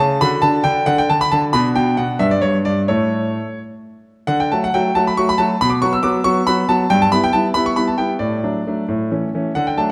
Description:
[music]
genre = classical-period piano sonatina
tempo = 91 BPM (dotted quarters)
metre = 6/8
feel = rubato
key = D major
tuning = A4 = 440 Hz
[part]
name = clear concert grand piano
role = solo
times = 0.0-9.9 s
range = G2 to E6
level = -17 LUFS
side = equal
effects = none
[sound]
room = wet recital hall reverb, RT60 1.7 s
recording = none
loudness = -17 LUFS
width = mono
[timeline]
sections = 0.0-4.3 A section; 4.3-9.9 B section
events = none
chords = 0.2 D; 1.5 Bm; 2.2 G; 2.9 N.C.; 4.3 D; 5.6 B5; 6.9 Em/G; 8.2 D/A; 8.9 A

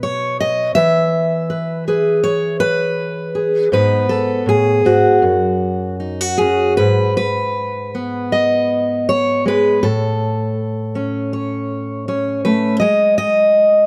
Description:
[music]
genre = folk, solo fingerstyle acoustic guitar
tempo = 80 BPM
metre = 4/4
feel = rubato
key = unclear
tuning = A4 = 440 Hz
[part]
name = fingerpicked steel-string acoustic guitar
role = solo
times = 0.0-13.9 s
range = F#2 to E5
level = -17 LUFS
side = equal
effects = none
[sound]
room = light reverb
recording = close, detailed microphones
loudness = -17 LUFS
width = mono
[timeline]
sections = 0.0-6.8 A section; 6.8-13.9 B section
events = none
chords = 0.0 B; 0.8 E; 3.7 G#m; 5.2 F#5; 6.8 G#m; 9.8 A; 12.8 Emaj7/G# (rootless)

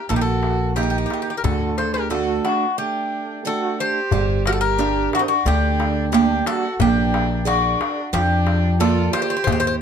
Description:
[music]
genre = greek folk, Greek bouzouki band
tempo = 90 BPM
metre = 4/4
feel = straight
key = G harmonic minor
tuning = A4 = 442 Hz
[part]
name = Greek bouzouki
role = melody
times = 0.0-9.7 s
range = Eb4 to C5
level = -23 LUFS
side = left 3 dB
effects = none
[part]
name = rich violin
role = second line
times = 0.0-9.8 s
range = C4 to A4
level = -27 LUFS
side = right 2 dB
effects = none
[part]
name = picked steel-string acoustic guitar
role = accompaniment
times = 0.1-9.8 s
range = D3 to F#5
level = -24 LUFS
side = right 7 dB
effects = none
[part]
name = upright bass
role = bass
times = 0.1-9.8 s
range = G1 to F2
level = -22 LUFS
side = left 1 dB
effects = none
[part]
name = darbuka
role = percussion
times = 0.1-9.7 s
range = none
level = -27 LUFS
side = left 4 dB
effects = none
[sound]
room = light reverb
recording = close, detailed microphones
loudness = -18 LUFS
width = side -7 dB against mid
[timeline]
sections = 0.0-4.1 A section; 4.1-9.8 B section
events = break 2.8-4.1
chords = 0.0 Eb; 1.4 D; 4.1 Gm; 6.8 Bb7

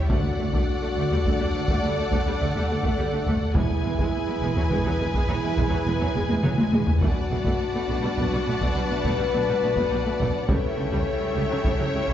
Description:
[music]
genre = cinematic, epic orchestral film score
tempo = 69 BPM (dotted quarters)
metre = 12/8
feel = straight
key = B minor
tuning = A4 = 439 Hz
[part]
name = rich symphonic violin section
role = melody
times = 0.0-12.1 s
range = E5 to G#5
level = -36 LUFS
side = left 2 dB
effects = none
[part]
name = warm symphonic violin section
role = second line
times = 0.0-12.1 s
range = B4 to D5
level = -33 LUFS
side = left 1 dB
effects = none
[part]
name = mellow French horn section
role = sustained chords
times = 0.0-12.1 s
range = E4 to B4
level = -29 LUFS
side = left 3 dB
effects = none
[part]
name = rich studio string section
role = sustained chords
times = 0.0-12.1 s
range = C#4 to A5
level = -32 LUFS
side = equal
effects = none
[part]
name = rich symphonic viola section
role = accompaniment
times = 0.1-12.1 s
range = F#3 to A3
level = -34 LUFS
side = right 1 dB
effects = none
[part]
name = rich studio double bass section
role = bass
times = 0.1-12.0 s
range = E1 to D2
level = -30 LUFS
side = right 2 dB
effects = none
[part]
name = rich symphonic cello section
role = bass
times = 0.1-12.1 s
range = D2 to C#3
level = -31 LUFS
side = right 2 dB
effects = none
[part]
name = taiko ensemble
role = drums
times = 0.1-12.1 s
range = none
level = -26 LUFS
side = equal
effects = none
[sound]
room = wet concert hall reverb, RT60 2.4 s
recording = heard from further back in the room, nothing above 7.7 kHz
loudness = -21 LUFS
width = side -10 dB against mid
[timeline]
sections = 0.0-12.1 A section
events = drum fill 6.2-7.0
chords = 0.1 D; 3.6 E; 7.0 Bm7; 10.5 C#dim

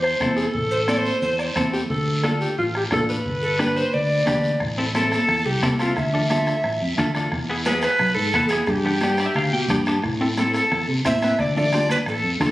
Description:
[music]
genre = latin, cumbia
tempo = 177 BPM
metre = 4/4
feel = straight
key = A minor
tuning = A4 = 439 Hz
[part]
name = mellow alto saxophone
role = melody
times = 0.0-4.2 s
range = F4 to C5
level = -24 LUFS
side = equal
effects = none
[part]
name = fingered electric bass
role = bass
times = 0.0-12.5 s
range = G1 to C3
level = -25 LUFS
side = equal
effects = none
[part]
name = bombo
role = percussion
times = 0.0-12.5 s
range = none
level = -30 LUFS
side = equal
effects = none
[part]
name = semi-hollow electric guitar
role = accompaniment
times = 0.2-12.5 s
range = B3 to A5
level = -26 LUFS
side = left 1 dB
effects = none
[part]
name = congas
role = percussion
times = 0.2-12.5 s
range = none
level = -29 LUFS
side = right 1 dB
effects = none
[part]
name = guiro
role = percussion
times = 0.2-12.5 s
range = none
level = -33 LUFS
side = left 1 dB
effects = none
[part]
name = breathy bright alto recorder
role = second line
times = 0.7-12.5 s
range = F4 to E5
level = -22 LUFS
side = right 1 dB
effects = none
[sound]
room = moderate large studio reverb, RT60 1.4 s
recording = recorded on a phone in the room, studio ambience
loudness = -19 LUFS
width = side -16 dB against mid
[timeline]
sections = 0.0-4.6 A section; 4.6-12.5 B section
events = recorder solo 4.6-12.5; clean electric guitar fill 9.0-10.0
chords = 0.0 Am; 1.9 Dm; 3.3 G; 4.6 Am; 6.0 Dm; 7.3 E; 8.7 G; 10.0 Am; 11.4 Dm

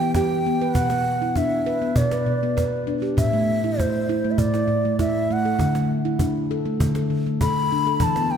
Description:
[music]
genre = world meditative, meditative tuned percussion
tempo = 99 BPM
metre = 4/4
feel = straight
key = unclear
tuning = A4 = 439 Hz
[part]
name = breathy bright bass bansuri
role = melody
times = 0.0-8.4 s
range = C5 to B5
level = -24 LUFS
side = equal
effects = tape echo
[part]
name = handpan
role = arpeggios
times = 0.0-8.4 s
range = A2 to B4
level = -22 LUFS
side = equal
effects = none
[part]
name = cajon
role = percussion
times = 0.1-8.4 s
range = none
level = -26 LUFS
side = equal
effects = none
[sound]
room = wet concert hall reverb, RT60 2.0 s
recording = none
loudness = -19 LUFS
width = side -8 dB against mid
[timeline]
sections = 0.0-8.4 A section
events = none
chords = 0.0 Em; 0.8 Bm; 3.2 A5; 5.6 D5

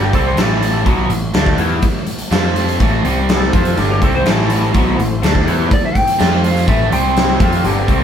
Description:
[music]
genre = classic rock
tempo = 124 BPM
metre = 4/4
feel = straight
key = A minor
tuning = A4 = 440 Hz
[part]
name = clean lap steel guitar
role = melody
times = 0.0-8.0 s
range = E4 to G5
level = -20 LUFS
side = equal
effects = none
[part]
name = crunchy overdriven guitar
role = riff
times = 0.0-8.0 s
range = G2 to F4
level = -21 LUFS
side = left 7 dB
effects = phaser
[part]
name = crunchy overdriven guitar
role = riff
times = 0.0-8.0 s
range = G2 to F4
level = -20 LUFS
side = right 6 dB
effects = none
[part]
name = growling picked electric bass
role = bass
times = 0.0-8.0 s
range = G1 to F2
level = -18 LUFS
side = equal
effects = overdrive
[part]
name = big rock drum kit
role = drums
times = 0.1-8.0 s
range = hi-hat, kick drum, snare drum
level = -16 LUFS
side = equal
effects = none
[part]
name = tonewheel organ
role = sustained chords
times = 3.1-8.0 s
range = G3 to G5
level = -28 LUFS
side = equal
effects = none
[sound]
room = light reverb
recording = band playing live in one room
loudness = -12 LUFS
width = side -8 dB against mid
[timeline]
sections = 0.0-8.0 A section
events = electric slide guitar solo 0.0-8.0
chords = 0.0 Am; 2.3 F5; 2.8 A5; 3.0 C5; 3.5 Am; 6.2 F5; 6.7 A5; 6.9 C5; 7.4 Am

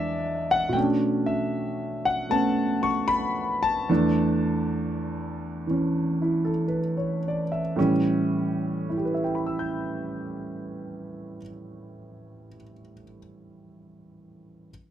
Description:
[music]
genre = solo jazz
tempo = 53-77 BPM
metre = 4/4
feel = swing 68% on 8ths, rubato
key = A mixolydian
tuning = A4 = 439 Hz
[part]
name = warm concert grand piano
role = solo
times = 0.0-14.7 s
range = E2 to G6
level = -24 LUFS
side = equal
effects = none
[sound]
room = little or no reverb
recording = dry, close 1970s-style studio recording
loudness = -23 LUFS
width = side -10 dB against mid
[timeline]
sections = 0.7-7.8 A section; 7.8-12.2 B section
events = slowing down 0.7-7.8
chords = 0.0 E7; 0.7 Bm9; 3.9 E7sus4; 7.8 A7

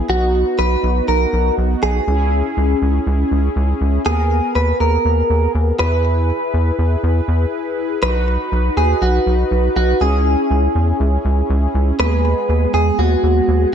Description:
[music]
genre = synth-pop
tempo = 121 BPM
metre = 4/4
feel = straight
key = B major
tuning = A4 = 439 Hz
[part]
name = mellow synth brass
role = accompaniment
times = 0.0-13.7 s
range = G#3 to B4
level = -21 LUFS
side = equal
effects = chorus, phaser
[part]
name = direct-recorded clean electric guitar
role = melody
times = 0.1-13.7 s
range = F#4 to B4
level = -19 LUFS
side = right 1 dB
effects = wide subtle chorus, ping-pong delay
[part]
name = rubbery square bass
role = bass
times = 0.1-13.7 s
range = B1 to E2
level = -16 LUFS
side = equal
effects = none
[sound]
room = moderate recital hall reverb, RT60 1.4 s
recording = dark, warm production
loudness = -14 LUFS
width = side -8 dB against mid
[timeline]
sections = 0.1-8.0 A section; 8.0-13.7 B section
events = break 7.5-8.0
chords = 0.1 B; 2.1 C#m; 4.1 G#madd9/D#; 5.8 E; 8.0 B; 10.0 C#m; 12.0 G#m/D#

